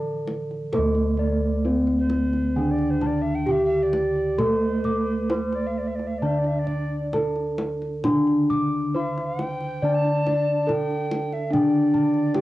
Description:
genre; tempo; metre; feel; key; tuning
Javanese gamelan; 67 BPM; 4/4; uneven beats; D slendro; A4 = 440 Hz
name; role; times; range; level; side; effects
gamelan-type bronze metallophone; melody; 0.0-12.4 s; C4-40c to D5; -23 LUFS; equal; none
gamelan-type bronze metallophone; accompaniment; 0.0-12.4 s; D3 to D4; -29 LUFS; right 2 dB; cassette tape
gamelan-type bossed gongs; arpeggios; 0.0-12.4 s; C5-40c to D6; -34 LUFS; left 2 dB; cassette tape, plate reverb
gamelan-type bossed gongs; bass; 0.0-12.4 s; D2 to A4+20c; -28 LUFS; left 1 dB; none
kendang; percussion; 0.3-12.4 s; none; -34 LUFS; left 1 dB; none
breathy mellow alto recorder; second line; 2.0-12.4 s; C5-38c to A5+22c; -33 LUFS; right 2 dB; cassette tape, plate reverb
room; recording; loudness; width
moderate studio reverb, RT60 0.5 s; home recording on cassette; -21 LUFS; side -16 dB against mid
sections
0.7-12.4 A section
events
none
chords
none

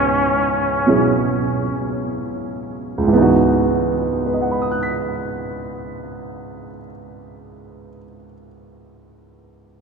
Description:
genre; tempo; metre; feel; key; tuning
jazz; 52-59 BPM; 4/4; swing 67% on 8ths; C# minor; A4 = 440 Hz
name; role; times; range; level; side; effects
trumpet with plunger mute; melody; 0.0-2.0 s; C#4; -22 LUFS; left 1 dB; none
warm grand piano; accompaniment; 0.0-9.8 s; C#2 to B6; -18 LUFS; right 2 dB; none
room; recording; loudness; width
wet cathedral reverb, RT60 4.9 s; recorded in a church or concert hall; -16 LUFS; side -5 dB against mid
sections
0.0-3.1 A section; 3.1-7.7 B section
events
slowing down 0.0-3.1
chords
0.0 C#m11

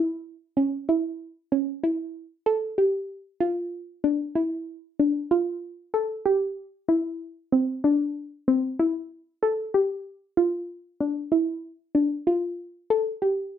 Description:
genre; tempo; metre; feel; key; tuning
progressive instrumental, progressive; 190 BPM (eighths); 11/8; straight; D minor; A4 = 440 Hz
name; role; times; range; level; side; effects
soft round pluck; solo; 0.0-13.6 s; C4 to A4; -23 LUFS; equal; chorus
room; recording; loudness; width
wet small room reverb, RT60 0.5 s; none; -24 LUFS; side -9 dB against mid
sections
0.0-9.4 A section; 9.4-13.6 B section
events
none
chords
none

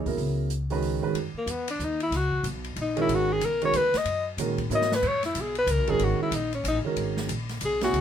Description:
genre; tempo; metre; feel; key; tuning
modal jazz; 186 BPM; 3/4; swing 62% on 8ths; C# dorian; A4 = 440 Hz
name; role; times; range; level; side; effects
warm grand piano; accompaniment; 0.0-8.0 s; C#3 to C#5; -28 LUFS; right 6 dB; none
upright bass; bass; 0.1-8.0 s; G#1 to A#2; -31 LUFS; left 1 dB; none
open jazz drum kit; drums; 0.1-8.0 s; crash cymbal, hi-hat, kick drum, ride cymbal, snare drum, toms; -35 LUFS; left 1 dB; none
breathy alto saxophone; melody; 1.4-8.0 s; A#3 to D#5; -25 LUFS; left 2 dB; none
room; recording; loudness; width
light reverb; minimal, uncompressed stereo recording; -24 LUFS; side -9 dB against mid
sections
0.0-1.2 A section; 1.2-8.0 B section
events
alto saxophone solo 1.2-8.0; drum fill 4.7-5.0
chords
0.0 C#9sus4

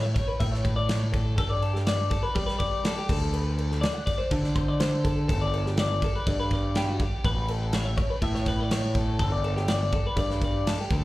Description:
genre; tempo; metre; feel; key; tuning
math rock and midwest emo; 123 BPM; 4/4; straight; unclear; A4 = 440 Hz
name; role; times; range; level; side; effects
twelve-string electric guitar; arpeggios; 0.0-11.0 s; F#4 to F#5; -30 LUFS; left 2 dB; analog delay, plate reverb, slapback echo
growling fingered electric bass; bass; 0.0-11.0 s; G1 to G3; -27 LUFS; equal; overdrive
modern studio drum kit; drums; 0.2-11.0 s; crash cymbal, kick drum, snare drum; -28 LUFS; equal; none
room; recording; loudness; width
light reverb; live gig heard through the venue's PA, club reverb; -24 LUFS; side -17 dB against mid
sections
0.0-11.0 A section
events
none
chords
0.0 Aadd9; 1.4 Gadd9; 3.1 D7(no3); 5.3 Gadd9; 7.2 Aadd9; 9.2 Gadd9

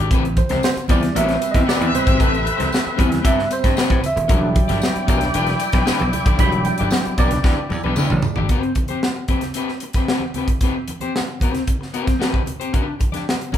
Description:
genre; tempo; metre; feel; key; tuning
funk; 114 BPM; 4/4; straight; unclear; A4 = 441 Hz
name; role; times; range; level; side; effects
electric guitar at the edge of break-up; accompaniment; 0.0-13.6 s; C4 to D5; -24 LUFS; left 4 dB; none
slap bass; bass; 0.0-8.5 s; D#1 to A2; -23 LUFS; equal; none
crisp fusion drum kit; drums; 0.1-13.6 s; hi-hat, kick drum, snare drum, toms; -20 LUFS; equal; none
congas; percussion; 0.1-13.6 s; none; -32 LUFS; right 3 dB; none
tambourine; percussion; 0.1-8.4 s; none; -37 LUFS; left 2 dB; none
tine electric piano; stabs; 0.4-8.5 s; F#3 to B5; -23 LUFS; right 3 dB; medium stereo tremolo
clear horn section; second line; 1.2-8.2 s; C4 to G5; -24 LUFS; left 1 dB; none
room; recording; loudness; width
moderate large studio reverb, RT60 0.9 s; band playing live in one room; -16 LUFS; side -10 dB against mid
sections
0.0-8.5 A section; 8.5-13.6 B section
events
tine electric piano solo 0.0-8.5; drum fill 7.4-8.5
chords
0.1 Am9; 4.3 Em7; 8.5 Gadd11/C; 12.7 G/D

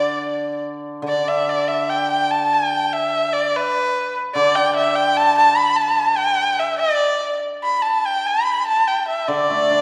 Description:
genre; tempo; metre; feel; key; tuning
chinese traditional, Chinese chamber ensemble; 72 BPM; 2/4; rubato; D zhi mode; A4 = 440 Hz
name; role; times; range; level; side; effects
warm erhu; melody; 0.0-9.8 s; B4 to B5; -20 LUFS; equal; none
hammered dulcimer; accompaniment; 0.0-9.8 s; D3 to D4; -26 LUFS; equal; none
room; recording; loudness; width
wet scoring stage reverb, RT60 1.7 s; recorded in a church or concert hall; -19 LUFS; mono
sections
0.0-1.1 A section; 1.1-9.8 B section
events
none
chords
none

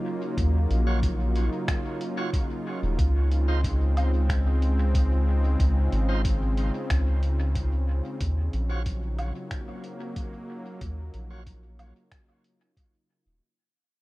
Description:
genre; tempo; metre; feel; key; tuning
ambient dub; 92 BPM; 4/4; straight; Eb dorian; A4 = 441 Hz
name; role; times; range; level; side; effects
warm analog pad; sustained chords; 0.0-13.4 s; Db3 to F4; -32 LUFS; equal; chorus
soft dub sub bass; bass; 0.4-13.4 s; Eb1 to Eb2; -24 LUFS; equal; none
electronic kick drum; drums; 0.4-12.9 s; none; -29 LUFS; equal; overdrive
lo-fi sampler-style drum kit; drums; 0.4-12.9 s; finger snaps, hi-hat, woodblock; -39 LUFS; equal; overdrive, dub echo
bright tonewheel organ; stabs; 0.9-11.4 s; Eb4 to Db5; -38 LUFS; right 3 dB; overdrive, fast rotary speaker, dub echo
room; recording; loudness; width
digital ambience; echo-heavy mix; -23 LUFS; side -19 dB against mid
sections
0.0-13.4 A section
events
fade-out 6.5-13.4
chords
0.0 Ebm9; 3.0 Dbmaj9; 8.2 Ebm9

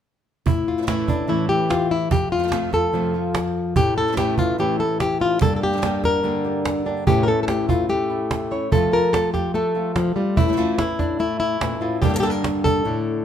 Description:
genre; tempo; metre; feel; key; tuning
flamenco; 145 BPM; 4/4; straight; A phrygian dominant; A4 = 440 Hz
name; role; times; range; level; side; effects
flamenco guitar; melody; 0.5-13.2 s; F2 to C#5; -20 LUFS; left 2 dB; none
flamenco guitar; stabs; 0.5-12.9 s; F2 to G4; -28 LUFS; right 6 dB; none
cajon; percussion; 0.5-13.2 s; none; -24 LUFS; right 3 dB; none
room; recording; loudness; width
moderate large studio reverb, RT60 1.1 s; minimal, uncompressed stereo recording; -18 LUFS; side -9 dB against mid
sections
0.5-13.2 A section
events
none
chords
0.5 A; 2.1 F; 3.8 A; 5.4 Gm; 7.1 A; 8.7 F; 10.4 A; 12.0 Gm

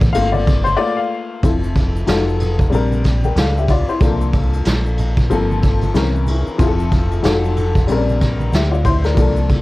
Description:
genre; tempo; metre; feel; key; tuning
hip hop, jazz-hop; 93 BPM; 4/4; swing 60% on 16ths; unclear; A4 = 440 Hz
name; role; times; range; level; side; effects
deep dub fingered electric bass; bass; 0.0-9.6 s; F1 to D2; -18 LUFS; equal; none
vintage brush drum kit; drums; 0.0-9.6 s; hi-hat, kick drum, ride cymbal, snare drum; -18 LUFS; equal; cassette tape
egg shaker and congas; percussion; 0.0-9.6 s; none; -28 LUFS; right 4 dB; none
warm upright piano; accompaniment; 0.1-9.6 s; E3 to G5; -19 LUFS; left 4 dB; cassette tape, plate reverb
room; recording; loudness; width
light reverb; home recording on cassette, vinyl crackle; -14 LUFS; side -19 dB against mid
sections
0.0-1.4 A section; 1.4-9.6 B section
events
upright piano solo 0.0-1.4; break 0.8-1.4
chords
0.1 Gm11; 0.8 Bbmaj7/A; 1.4 Fmaj7; 2.1 F7b9; 2.7 Bb69; 4.0 C13sus4; 5.3 Gm11; 5.9 C7b9; 6.6 Fmaj7; 7.2 F7b9; 7.9 Bb69

